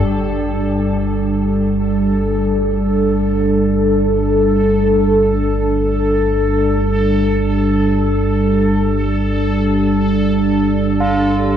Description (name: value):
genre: dark ambient drone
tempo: free time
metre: none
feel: none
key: unclear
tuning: A4 = 440 Hz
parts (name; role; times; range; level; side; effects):
- deep dark ambient pad; sustained chords; 0.0-11.6 s; G3 to A4; -15 LUFS; right 1 dB; chorus, built-in reverb
- tubular bells; arpeggios; 0.0-11.6 s; D4 to G4; -29 LUFS; right 2 dB; ping-pong delay
- deep rumbling drone; drone; 0.0-11.6 s; G1 to G2; -20 LUFS; left 1 dB; built-in reverb
- bubbling stepped-filter texture; texture; 0.0-11.6 s; A4; -26 LUFS; equal; chorus, built-in reverb
room: wet huge ambient reverb, RT60 7.6 s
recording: worn, warbling old tape, cassette tape, warbly pitch drift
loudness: -13 LUFS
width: side -9 dB against mid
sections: 0.1-11.6 A section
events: fade-in on synth texture 0.1-11.6; fade-in on tubular bells 0.1-11.6; filter sweep on synth drone 0.1-11.6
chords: 0.1 Gsus2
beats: free time